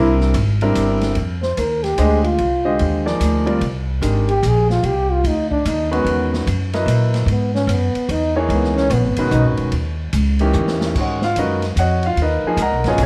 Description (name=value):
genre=modal jazz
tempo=147 BPM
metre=3/4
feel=swing 65% on 8ths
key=unclear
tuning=A4 = 440 Hz
part: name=breathy trombone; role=second line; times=0.0-9.5 s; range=Cb4 to C5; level=-22 LUFS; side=equal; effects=slapback echo
part: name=clear concert grand piano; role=accompaniment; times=0.0-13.1 s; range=C#3 to A#5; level=-22 LUFS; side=equal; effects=none
part: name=upright bass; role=bass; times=0.0-13.1 s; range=Fb1 to Bb2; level=-21 LUFS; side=equal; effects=none
part: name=open jazz drum kit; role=drums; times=0.2-13.1 s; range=crash cymbal, hi-hat, kick drum, ride cymbal, snare drum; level=-32 LUFS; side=equal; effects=none
room=moderate plate reverb, RT60 1.3 s, studio reverb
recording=none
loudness=-18 LUFS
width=mono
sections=0.0-1.2 A section; 1.2-11.0 A section; 11.0-13.1 A section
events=trombone solo 0.0-11.0; drum fill 10.5-11.0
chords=0.0 C7; 1.2 Fm11; 6.1 Dbm11; 9.7 Eb7b9; 11.0 G#m11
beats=0.36 0.77 | 1.17 1.58 1.99 | 2.40 2.80 3.21 | 3.62 4.03 4.43 | 4.84 5.25 5.66 | 6.06 6.47 6.88 | 7.29 7.69 8.10 | 8.51 8.91 9.32 | 9.73 10.14 10.54 | 10.95 11.36 11.77 | 12.17 12.58 12.99